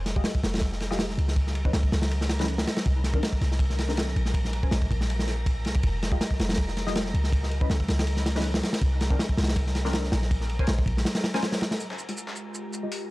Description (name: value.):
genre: drum and bass, jungle.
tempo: 161 BPM.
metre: 4/4.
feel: swing 54% on 16ths.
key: F minor.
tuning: A4 = 441 Hz.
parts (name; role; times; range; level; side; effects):
warm 808-style bass; bass; 0.0-11.1 s; F1 to Db2; -27 LUFS; equal; none.
wind-like tuned noise texture; texture; 0.7-13.1 s; Bb4 to Bb5; -41 LUFS; left 1 dB; built-in reverb.
crunchy breakbeat drum kit; drums; 0.1-11.8 s; kick drum, ride cymbal, snare drum; -26 LUFS; equal; none.
filtered dub chord stab; stabs; 0.2-13.1 s; Eb3 to Ab5; -36 LUFS; left 2 dB; wide subtle chorus, dub echo.
ethereal airy pad; sustained chords; 12.1-13.1 s; Ab3 to G4; -36 LUFS; left 1 dB; ensemble chorus, built-in reverb, vintage 12-bit sampler grit.
dusty soul sampler-style drum kit; drums; 11.8-13.0 s; hi-hat, shaker, snare drum; -36 LUFS; left 1 dB; overdrive, high-pass filter on perc, high-pass filter on snare, high-pass filter on hats, high-pass filter on room.
room: studio ambience.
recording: dry, gritty hardware recording, transformer saturation, vinyl crackle.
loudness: -24 LUFS.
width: side -19 dB against mid.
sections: 0.0-11.8 A section; 11.8-13.1 B section.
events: filter sweep on synth stab 11.8-13.1.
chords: 0.0 Fm9; 1.4 Dbm9; 2.9 Cm9; 4.3 Bbm9; 5.8 Fm9; 7.3 Dbm9; 8.8 Cm9; 10.3 Bbm9; 11.8 Fm9.